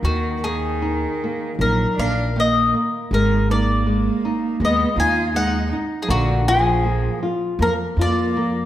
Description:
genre	fado-style ballad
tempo	79 BPM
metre	4/4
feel	rubato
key	Eb harmonic minor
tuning	A4 = 440 Hz
part	bowl-back mandolin	melody	0.0-8.7 s	Gb4 to Ab5	-22 LUFS	left 2 dB	slapback echo
part	clear cello	second line	0.0-8.7 s	D3 to F4	-25 LUFS	right 4 dB	none
part	flamenco guitar	accompaniment	0.0-8.7 s	Eb3 to F4	-25 LUFS	left 1 dB	none
part	upright bass	bass	0.0-8.7 s	Ab1 to F2	-22 LUFS	equal	none
room	moderate recital hall reverb, RT60 1.7 s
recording	none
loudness	-17 LUFS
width	side -12 dB against mid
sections	0.0-8.7 A section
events	none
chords	0.0 Eb5; 3.1 Absus2; 6.1 Bb

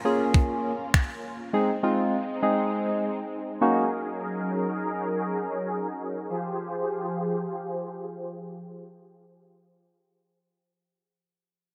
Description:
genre	dance-pop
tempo	101 BPM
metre	4/4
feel	straight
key	F minor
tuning	A4 = 440 Hz
part	soft electric-piano-like synth keys	accompaniment	0.0-3.9 s	Ab3 to Ab4	-27 LUFS	equal	chorus, sidechain pumping, low-pass filter
part	soft supersaw	sustained chords	0.0-9.4 s	F3 to C5	-33 LUFS	equal	ensemble chorus, sidechain pumping, low-pass filter
part	downlifter	sound effects	0.0-1.5 s	none	-54 LUFS	equal	none
part	crisp 8-bit digital drum machine	drums	0.3-1.1 s	finger snaps, kick drum	-24 LUFS	equal	gated reverb
room	moderate lush hall reverb, RT60 3.0 s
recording	bright 1980s-style digital production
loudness	-28 LUFS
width	mono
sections	0.0-6.3 A section; 6.3-8.7 B section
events	filter sweep 0.0-6.3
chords	0.0 Bbm; 1.5 Ab; 3.6 Gb6; 6.3 Fmadd9

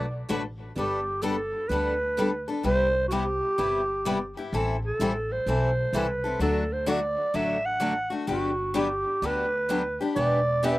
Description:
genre	acoustic string swing (jazz manouche)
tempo	128 BPM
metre	4/4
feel	swing 65% on 8ths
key	G major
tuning	A4 = 440 Hz
part	growling clarinet	melody	0.0-10.8 s	F#4 to F#5	-26 LUFS	right 1 dB	none
part	picked steel-string acoustic guitar	accompaniment	0.0-10.8 s	C3 to B4	-29 LUFS	left 3 dB	slapback echo
part	picked steel-string acoustic guitar	accompaniment	0.0-10.8 s	C3 to B4	-34 LUFS	right 3 dB	none
part	upright bass	bass	0.0-10.8 s	E1 to D2	-32 LUFS	equal	none
room	little or no reverb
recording	recorded outdoors, with no room sound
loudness	-24 LUFS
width	side -17 dB against mid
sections	0.8-10.8 A section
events	none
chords	0.0 D6; 0.8 Gadd9; 2.6 Cmaj7; 4.5 Am7; 6.4 D; 8.3 Gmaj7; 10.2 Em7

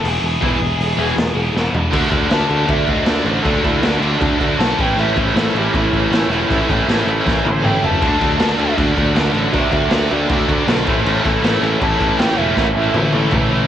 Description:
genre	punk rock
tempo	158 BPM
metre	4/4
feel	straight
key	A major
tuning	A4 = 439 Hz
part	dark smooth lead guitar	melody	0.0-13.3 s	D4 to A5	-23 LUFS	equal	overdrive, cassette tape, tape echo
part	high-gain distorted guitar	riff	0.0-13.7 s	E2 to D4	-22 LUFS	equal	distortion, cassette tape
part	modern bright picked electric bass	bass	0.0-13.7 s	E1 to D2	-21 LUFS	equal	none
part	raw garage drum kit	drums	0.1-13.4 s	crash cymbal, hi-hat, kick drum, snare drum, toms	-20 LUFS	equal	cassette tape
part	cranked stack guitar	riff	0.4-13.7 s	A2 to G#4	-22 LUFS	left 9 dB	overdrive, cassette tape
part	tight distorted guitar	riff	0.4-13.7 s	E2 to D4	-21 LUFS	right 9 dB	distortion, cassette tape
room	light reverb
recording	home recording on cassette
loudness	-14 LUFS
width	side -10 dB against mid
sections	0.0-1.9 A section; 1.9-13.7 B section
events	half time 0.0-1.9; drum fill 1.6-1.9, 7.3-8.0, 12.6-13.7; lead electric guitar solo 1.9-13.7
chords	0.0 E; 1.9 D; 4.8 A; 8.0 D; 10.9 A

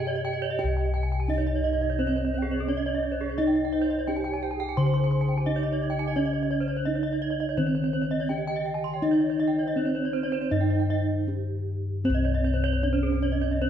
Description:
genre	Balinese gamelan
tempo	77-86 BPM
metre	4/4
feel	straight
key	C pelog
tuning	A4 = 440 Hz
part	gamelan-type bronze metallophone	melody	0.0-13.7 s	C4 to C5	-30 LUFS	right 5 dB	slapback echo
part	gamelan-type bronze metallophone	arpeggios	0.0-13.5 s	Ab4 to C6	-34 LUFS	right 6 dB	none
part	gamelan-type bossed gongs	bass	0.0-13.7 s	C2 to G4	-26 LUFS	left 2 dB	none
part	gamelan-type bronze metallophone	arpeggios	0.1-13.7 s	Ab4 to C6	-33 LUFS	left 2 dB	none
part	bright xiao	second line	1.6-11.6 s	G4 to G5	-36 LUFS	right 7 dB	none
room	light reverb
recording	none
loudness	-24 LUFS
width	side -9 dB against mid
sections	0.6-12.0 A section; 12.0-13.7 B section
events	break 10.9-12.0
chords	none

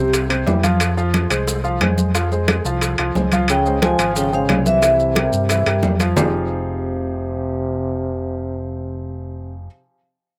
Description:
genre	Afro-Cuban jazz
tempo	179 BPM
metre	4/4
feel	straight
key	F minor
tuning	A4 = 440 Hz
part	vibraphone with medium hard mallets	melody	0.0-0.1, 3.5-9.7 s	G4 to Ab5	-25 LUFS	equal	slapback echo
part	mellow trombone	second line	0.0-0.1, 3.5-9.6 s	C3 to F3	-26 LUFS	equal	none
part	warm grand piano	accompaniment	0.0-9.7 s	C3 to F5	-25 LUFS	equal	slapback echo
part	fingered electric bass	bass	0.0-9.7 s	F1 to G2	-25 LUFS	equal	none
part	bongos	percussion	0.1-6.2 s	none	-31 LUFS	equal	none
part	congas	percussion	0.1-6.2 s	none	-24 LUFS	equal	none
part	maracas	percussion	0.1-6.2 s	none	-32 LUFS	equal	none
part	timbales	percussion	0.1-6.2 s	none	-26 LUFS	equal	none
room	little or no reverb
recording	recorded outdoors, with no room sound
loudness	-19 LUFS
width	mono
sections	0.0-3.5 A section; 3.5-6.2 B section; 6.2-8.8 C section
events	none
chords	0.1 C; 0.8 Fm; 3.5 Dbmaj7; 4.8 C7; 6.2 Fm9

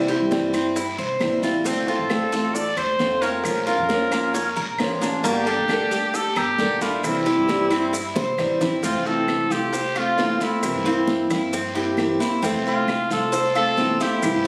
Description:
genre	latin, Cuban son and guajira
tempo	134 BPM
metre	4/4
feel	straight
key	F major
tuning	A4 = 439 Hz
part	picked steel-string acoustic guitar	accompaniment	0.0-14.4 s	C3 to A4	-26 LUFS	equal	none
part	Cuban tres	arpeggios	0.0-14.4 s	Bb3 to C5	-28 LUFS	equal	none
part	upright bass	bass	0.0-14.5 s	E1 to G2	-36 LUFS	equal	none
part	bongos	percussion	0.1-14.5 s	none	-37 LUFS	equal	none
part	congas	percussion	0.1-14.5 s	none	-33 LUFS	equal	none
part	maracas	percussion	0.1-14.5 s	none	-40 LUFS	equal	none
part	guiro	percussion	0.3-14.5 s	none	-38 LUFS	equal	none
part	claves	percussion	0.5-14.5 s	none	-36 LUFS	equal	none
part	warm trumpet	melody	1.7-14.5 s	E4 to D5	-26 LUFS	equal	none
room	moderate studio reverb, RT60 0.9 s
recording	recorded on a phone in the room, studio reverb, compression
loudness	-22 LUFS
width	mono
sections	0.0-8.8 A section; 8.8-14.5 B section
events	drum fill 8.2-8.8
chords	0.0 C; 1.7 Dm7; 3.4 Bbm; 5.2 Gmadd9; 7.0 C; 8.8 Fmaj7; 10.6 C7; 12.4 Fmaj7

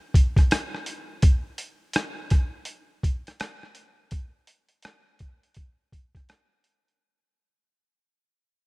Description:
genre	R&B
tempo	83 BPM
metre	4/4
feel	swing 64% on 16ths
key	none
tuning	none
part	boom bap sampler-style drum kit	drums	0.1-7.0 s	hi-hat, kick drum, rim click	-21 LUFS	equal	none
room	little or no reverb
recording	rough home demo mix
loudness	-22 LUFS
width	side -27 dB against mid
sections	0.0-7.0 A section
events	fade-out 0.0-7.0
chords	none

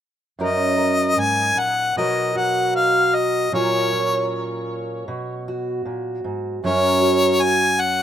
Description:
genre	folk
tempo	77 BPM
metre	4/4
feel	straight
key	F# major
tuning	A4 = 439 Hz
part	clear harmonica	melody	0.4-8.0 s	C#5 to G#5	-19 LUFS	left 2 dB	tape echo
part	fingerpicked steel-string acoustic guitar	accompaniment	0.4-8.0 s	F#2 to A#4	-21 LUFS	right 2 dB	none
room	light reverb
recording	rough home demo mix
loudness	-18 LUFS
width	side -10 dB against mid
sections	0.4-8.0 A section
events	none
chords	0.4 F#6; 1.9 Bmaj7; 3.5 F#maj7/A#; 5.1 B5; 6.6 F#

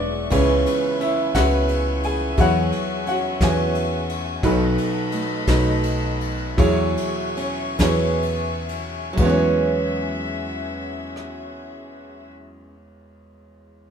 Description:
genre	acoustic folk-pop ballad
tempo	40-58 BPM (dotted quarters)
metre	6/8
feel	straight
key	E major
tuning	A4 = 440 Hz
part	warm baby grand piano	melody	0.0-13.9 s	B1 to G#5	-24 LUFS	equal	none
part	warm chamber string section	sustained chords	0.0-12.3 s	E3 to C#6	-30 LUFS	left 4 dB	none
part	picked old ladder-braced acoustic guitar	arpeggios	0.0-12.8 s	E3 to G#4	-26 LUFS	right 4 dB	none
part	woody fretless electric bass	bass	0.0-12.3 s	E1 to E2	-24 LUFS	left 1 dB	none
part	soft brush drum kit	drums	0.3-11.4 s	crash cymbal, kick drum, ride cymbal, rim click, snare drum	-27 LUFS	left 1 dB	none
room	moderate large studio reverb, RT60 0.9 s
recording	minimal, uncompressed stereo recording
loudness	-19 LUFS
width	side -7 dB against mid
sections	0.0-9.2 A section; 9.2-13.9 B section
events	slowing down 4.4-9.2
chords	0.3 C#m7; 2.4 E69; 4.4 B7; 6.6 E69

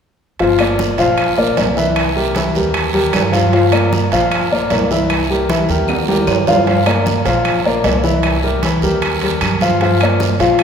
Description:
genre	Afro-Cuban jazz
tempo	153 BPM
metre	4/4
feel	straight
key	unclear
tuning	A4 = 439 Hz
part	warm concert grand piano	accompaniment	0.4-10.6 s	E3 to F5	-14 LUFS	left 2 dB	none
part	upright bass	bass	0.4-10.6 s	G1 to G2	-20 LUFS	right 2 dB	none
part	congas	percussion	0.4-10.6 s	none	-26 LUFS	right 1 dB	none
part	guiro	percussion	0.4-10.6 s	none	-28 LUFS	right 7 dB	none
part	timbales	percussion	0.4-10.6 s	none	-21 LUFS	right 5 dB	none
part	claves	percussion	0.6-10.6 s	none	-29 LUFS	left 6 dB	none
room	wet church reverb, RT60 2.8 s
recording	recorded in a church or concert hall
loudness	-12 LUFS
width	side -7 dB against mid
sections	0.4-10.6 A section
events	drum fill 5.9-6.7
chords	0.4 Gm7; 1.2 Bb; 2.0 C7; 2.8 Eb; 3.5 Gm7; 4.3 Bb; 5.1 C7; 5.9 Eb; 6.7 Gm7; 7.5 Bb; 8.2 C7; 9.0 Eb; 9.8 Gm7

